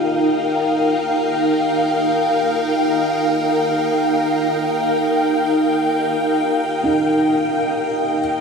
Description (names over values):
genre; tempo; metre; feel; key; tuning
ambient; free time; none; none; Eb major; A4 = 438 Hz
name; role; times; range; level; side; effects
evolving wavetable pad; sustained chords; 0.0-8.4 s; Eb4 to G5; -16 LUFS; equal; ensemble chorus, built-in reverb, shimmer reverb
felt-muted upright piano; arpeggios; 0.0-8.4 s; Eb4; -25 LUFS; right 1 dB; diffuse ambient delay, shimmer reverb
room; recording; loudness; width
wet huge ambient reverb, RT60 8.9 s; none; -16 LUFS; side -5 dB against mid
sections
0.0-8.4 A section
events
none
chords
0.0 Ebadd9